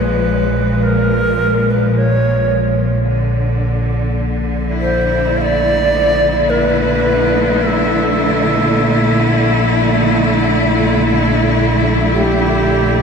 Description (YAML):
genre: dark ambient drone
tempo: 53 BPM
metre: 4/4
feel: straight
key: unclear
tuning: A4 = 440 Hz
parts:
  - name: bright reedy long shakuhachi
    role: melody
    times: 0.0-13.0 s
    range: G4 to F5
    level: -18 LUFS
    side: equal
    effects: diffuse ambient delay
  - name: bright symphonic cello section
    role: sustained chords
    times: 0.0-13.0 s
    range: Bb2 to E4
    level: -16 LUFS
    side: equal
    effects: none
  - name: analog drone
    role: drone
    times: 0.0-13.0 s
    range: Bb1 to Bb2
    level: -17 LUFS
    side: equal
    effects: chorus
room: wet cathedral reverb, RT60 4.8 s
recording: in a vast, echoing space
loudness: -12 LUFS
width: side -6 dB against mid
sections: 0.0-13.0 A section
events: none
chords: 0.0 Bbm; 3.1 Dsus2